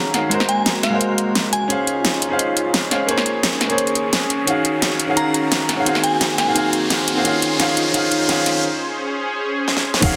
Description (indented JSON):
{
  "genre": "liquid drum and bass",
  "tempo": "173 BPM",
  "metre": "4/4",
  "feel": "straight",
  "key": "unclear",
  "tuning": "A4 = 440 Hz",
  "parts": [
    { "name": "glassy synth bell", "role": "melody", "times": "0.0-1.7, 5.2-6.6 s", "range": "F5 to Bb5", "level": "-28 LUFS", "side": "equal", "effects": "chorus, dub echo" },
    { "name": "clear baby grand piano", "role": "accompaniment", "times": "0.0-10.2 s", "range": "Eb3 to F5", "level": "-22 LUFS", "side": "equal", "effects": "digital delay" },
    { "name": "lush unison pad", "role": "sustained chords", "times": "0.0-10.2 s", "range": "Bb3 to F5", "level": "-28 LUFS", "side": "equal", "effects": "chorus" },
    { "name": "riser and downlifter", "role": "sound effects", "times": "2.3-10.2 s", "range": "none", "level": "-29 LUFS", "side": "equal", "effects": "none" },
    { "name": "sub bass with octave", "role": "bass", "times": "0.1-10.2 s", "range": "Eb1 to F2", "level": "-42 LUFS", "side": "equal", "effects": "none" },
    { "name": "pop drum kit", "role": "drums", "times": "0.1-10.1 s", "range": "crash cymbal, hi-hat, snare drum", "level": "-22 LUFS", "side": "equal", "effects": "overdrive, high-pass filter on hats, high-pass filter on snare, high-pass filter on cymbals, high-pass filter on room" },
    { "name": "crunchy breakbeat drum kit", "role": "drums", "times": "10.0-10.2 s", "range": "none", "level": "barely audible", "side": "none", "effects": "none" },
    { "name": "electronic kick drum", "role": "drums", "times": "10.0-10.1 s", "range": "none", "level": "-20 LUFS", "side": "equal", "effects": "overdrive" }
  ],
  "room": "wet digital room reverb, RT60 1.3 s, digital ambience",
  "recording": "dense, heavily limited modern master",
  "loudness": "-19 LUFS",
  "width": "mono",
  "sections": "0.0-10.0 A section",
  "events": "build-up 0.0-10.0; filter sweep on analog synth pad 0.0-10.0; riser 2.3-8.6; break 8.6-10.0; drum fill 9.7-10.0",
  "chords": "0.3 Ab9; 1.7 Dbmaj7; 3.1 Bbm9; 4.5 Ebm11; 5.9 Ab9; 7.3 Dbmaj7; 8.6 Abadd11/Db"
}